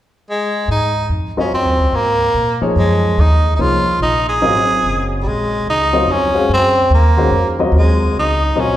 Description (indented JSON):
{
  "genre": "modal jazz",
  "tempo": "145 BPM",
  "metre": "3/4",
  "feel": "swing 65% on 8ths",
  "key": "Ab mixolydian",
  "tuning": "A4 = 440 Hz",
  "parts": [
    { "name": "growling tenor saxophone", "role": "melody", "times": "0.3-8.8 s", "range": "G3 to Ab4", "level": "-16 LUFS", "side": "equal", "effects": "none" },
    { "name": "upright bass", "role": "bass", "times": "0.7-8.8 s", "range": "Gb1 to Bb2", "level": "-17 LUFS", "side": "equal", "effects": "none" },
    { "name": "warm baby grand piano", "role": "accompaniment", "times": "1.4-8.8 s", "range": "Eb3 to F5", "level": "-19 LUFS", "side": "left 2 dB", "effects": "none" }
  ],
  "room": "wet recital hall reverb, RT60 1.6 s",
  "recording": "recorded in a church or concert hall",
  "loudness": "-12 LUFS",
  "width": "side -12 dB against mid",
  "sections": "0.7-5.7 A section; 5.7-8.8 B section",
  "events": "none",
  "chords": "0.0 N.C.; 0.7 Ab9sus4; 5.7 Ab9sus4 (rootless)",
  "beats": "0.27 | 0.69 1.10 1.51 | 1.93 2.34 2.76 | 3.17 3.59 4.00 | 4.42 4.83 5.25 | 5.66 6.08 6.49 | 6.91 7.32 7.74 | 8.15 8.56"
}